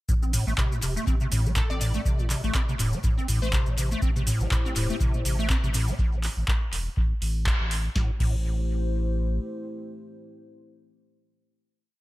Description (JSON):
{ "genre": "acid house", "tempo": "122 BPM", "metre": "4/4", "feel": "swing 56% on 16ths", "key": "A minor", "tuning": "A4 = 440 Hz", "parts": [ { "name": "acid bass, square", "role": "riff", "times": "0.1-8.4 s", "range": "A2 to C4", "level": "-29 LUFS", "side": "equal", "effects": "overdrive, ensemble chorus, sidechain pumping, tape echo" }, { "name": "round analog bass", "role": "bass", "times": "0.1-9.4 s", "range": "E1 to A1", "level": "-28 LUFS", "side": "equal", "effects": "sidechain pumping" }, { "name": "electronic kick drum", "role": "drums", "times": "0.1-8.4 s", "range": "none", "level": "-26 LUFS", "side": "equal", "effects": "none" }, { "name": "maracas", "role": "percussion", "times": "0.1-6.0 s", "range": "none", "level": "-36 LUFS", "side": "left 2 dB", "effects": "tape echo" }, { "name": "booming analog drum machine", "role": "drums", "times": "0.3-8.4 s", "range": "crash cymbal, handclaps, hi-hat, snare drum", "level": "-33 LUFS", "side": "right 1 dB", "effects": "tape echo" }, { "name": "glassy wavetable pluck", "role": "melody", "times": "1.6-3.8 s", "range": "A4 to D5", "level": "-38 LUFS", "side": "left 3 dB", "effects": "chorus, cassette tape, tape echo" }, { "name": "dark analog pad", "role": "sustained chords", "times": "4.0-11.6 s", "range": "A3 to C5", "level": "-36 LUFS", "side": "left 2 dB", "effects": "lush chorus, sidechain pumping" } ], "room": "digital ambience", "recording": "echo-heavy mix", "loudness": "-23 LUFS", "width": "side -18 dB against mid", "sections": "0.1-8.0 groove; 8.0-11.9 final chord", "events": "band accent 7.5", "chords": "0.1 Am7" }